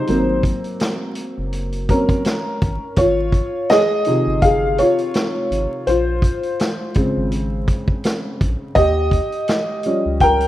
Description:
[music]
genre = hip hop, jazz-hop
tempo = 83 BPM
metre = 4/4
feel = swing 58% on 16ths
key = Bb dorian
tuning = A4 = 440 Hz
[part]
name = dark upright piano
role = accompaniment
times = 0.0-10.5 s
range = C3 to G5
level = -18 LUFS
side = equal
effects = none
[part]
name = round analog bass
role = bass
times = 0.1-10.5 s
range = Gb1 to Eb2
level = -22 LUFS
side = equal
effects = none
[part]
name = vintage drum kit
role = drums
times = 0.1-10.5 s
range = hi-hat, kick drum, snare drum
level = -21 LUFS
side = equal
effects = none
[sound]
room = light reverb, small room ambience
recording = rough home demo mix, vinyl crackle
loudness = -16 LUFS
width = side -14 dB against mid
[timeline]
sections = 0.0-10.5 A section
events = upright piano solo 0.0-10.5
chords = 0.1 Ab9; 3.0 Dbmaj9; 5.9 Bbm9; 8.8 Eb7

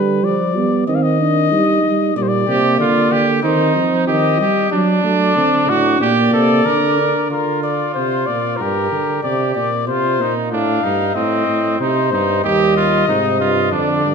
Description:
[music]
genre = classical, imitative canzona for brass ensemble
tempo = 94 BPM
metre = 4/4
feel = straight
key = C minor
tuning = A4 = 441 Hz
[part]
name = warm trumpet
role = melody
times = 0.0-14.1 s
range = Bb4 to F5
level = -20 LUFS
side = left 9 dB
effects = none
[part]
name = dark euphonium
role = accompaniment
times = 0.0-7.3, 12.4-14.1 s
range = C3 to Eb4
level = -19 LUFS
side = right 2 dB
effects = none
[part]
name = clear tuba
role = bass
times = 0.0-14.1 s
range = Eb2 to G3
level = -20 LUFS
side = right 3 dB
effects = none
[part]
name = clear trumpet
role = second line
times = 2.5-14.1 s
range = C4 to Bb4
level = -18 LUFS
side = right 5 dB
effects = none
[sound]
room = wet recital hall reverb, RT60 1.5 s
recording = none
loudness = -14 LUFS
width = side -6 dB against mid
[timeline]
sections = 0.0-7.3 A section; 7.3-14.1 B section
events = none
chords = 0.0 G; 0.9 Cm/Eb; 2.2 Gm/Bb; 3.4 Cm/Eb; 4.7 D/F#; 6.0 Gm/Bb; 8.6 Gm; 9.9 Cm; 11.2 Adim; 12.4 Cm/Eb

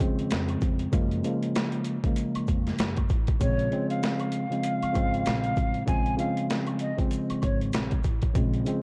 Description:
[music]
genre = hip hop, boom-bap hip-hop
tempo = 97 BPM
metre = 4/4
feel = swing 59% on 16ths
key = Bb minor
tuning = A4 = 439 Hz
[part]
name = tine electric piano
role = accompaniment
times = 0.0-8.8 s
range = Db3 to C4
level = -31 LUFS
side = equal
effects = cassette tape, high-pass filter, low-pass filter
[part]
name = upright bass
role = bass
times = 0.0-8.6 s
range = Ab1 to Gb2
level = -34 LUFS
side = equal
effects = none
[part]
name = boom bap sampler-style drum kit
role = drums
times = 0.0-8.8 s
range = hi-hat, kick drum, snare drum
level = -30 LUFS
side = equal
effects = overdrive
[part]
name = maracas and woodblock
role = percussion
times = 0.0-8.8 s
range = none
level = -48 LUFS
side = equal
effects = none
[part]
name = breathy jazz flute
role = melody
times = 3.4-7.6 s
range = Db5 to Ab5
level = -34 LUFS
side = equal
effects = high-pass filter, low-pass filter
[sound]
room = light reverb, studio ambience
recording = worn, warbling old tape, cassette tape, warbly pitch drift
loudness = -27 LUFS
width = mono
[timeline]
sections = 0.0-3.4 A section; 3.4-8.8 B section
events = none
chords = 0.0 Eb13sus4; 0.9 Gbmaj7; 3.4 Bbm7

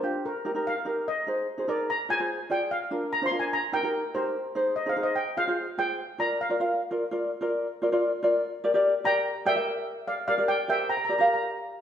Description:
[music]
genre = calypso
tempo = 147 BPM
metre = 4/4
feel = straight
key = unclear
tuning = A4 = 440 Hz
[part]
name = steel pan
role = melody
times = 0.0-11.4 s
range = Bb4 to C6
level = -28 LUFS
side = right 1 dB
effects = none
[part]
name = ukulele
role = accompaniment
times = 0.0-11.6 s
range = D4 to F5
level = -27 LUFS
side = equal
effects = none
[sound]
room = wet stone room reverb, RT60 1.3 s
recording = band playing live in one room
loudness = -25 LUFS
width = side -9 dB against mid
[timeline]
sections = 0.0-6.8 A section; 6.8-8.4 B section; 8.4-11.8 C section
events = steel pan solo 0.0-6.8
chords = 0.3 Eb; 1.1 Abadd9; 1.9 Fm; 2.7 Bb; 3.5 Eb; 4.4 Ab; 5.2 Fm; 6.0 Bb; 8.4 Gm7

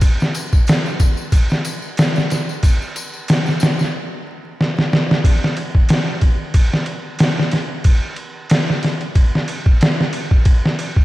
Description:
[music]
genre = trip hop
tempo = 92 BPM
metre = 4/4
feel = swing 56% on 16ths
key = none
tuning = none
[part]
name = trip hop sampler-style drum kit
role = drums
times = 0.0-11.0 s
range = kick drum, ride cymbal, snare drum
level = -14 LUFS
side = equal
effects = small room ambience
[part]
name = tambourine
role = percussion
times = 0.0-3.9 s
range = none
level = -32 LUFS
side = left 4 dB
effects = none
[sound]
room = moderate lush hall reverb, RT60 2.6 s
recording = dreamy mix soaked in reverb, vinyl crackle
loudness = -14 LUFS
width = side -16 dB against mid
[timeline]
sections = 0.0-5.2 A section; 5.2-11.0 B section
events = drum fill 4.6-5.2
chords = none

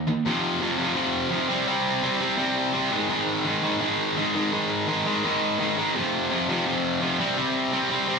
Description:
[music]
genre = punk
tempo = 168 BPM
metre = 4/4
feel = straight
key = F minor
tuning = A4 = 440 Hz
[part]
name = distorted electric guitar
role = solo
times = 0.0-8.2 s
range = F2 to C4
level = -22 LUFS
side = equal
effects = overdrive, slapback echo
[sound]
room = digital ambience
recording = live gig heard through the venue's PA, club reverb, nothing above 10.3 kHz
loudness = -22 LUFS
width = side -4 dB against mid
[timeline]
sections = 0.2-8.2 A section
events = none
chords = 0.2 F5; 1.5 C5; 2.9 Ab5; 5.9 F5; 7.2 C5

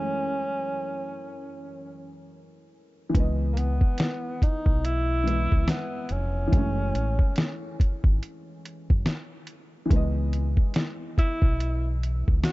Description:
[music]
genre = lo-fi hip hop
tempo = 71 BPM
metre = 4/4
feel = swing 61% on 16ths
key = C# minor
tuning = A4 = 440 Hz
[part]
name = breathy tenor saxophone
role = melody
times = 0.0-12.5 s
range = A#3 to F#4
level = -31 LUFS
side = equal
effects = low-pass filter, analog delay
[part]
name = dark upright piano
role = accompaniment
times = 0.0-12.5 s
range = F#2 to D#5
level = -34 LUFS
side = left 1 dB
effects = cassette tape, low-pass filter
[part]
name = deep dub fingered electric bass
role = bass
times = 3.1-12.4 s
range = E#1 to C#2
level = -26 LUFS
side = equal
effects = none
[part]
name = lo-fi sampler-style drum kit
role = drums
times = 3.1-12.5 s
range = hi-hat, kick drum, snare drum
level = -22 LUFS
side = equal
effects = none
[sound]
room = small room ambience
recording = dark, warm production, nothing above 7.8 kHz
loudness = -23 LUFS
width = side -20 dB against mid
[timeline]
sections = 0.0-3.1 A section; 3.1-12.5 B section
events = filter sweep 0.0-3.1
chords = 0.0 F#m7; 3.1 C#m7; 6.5 F#m7; 9.9 C#m7

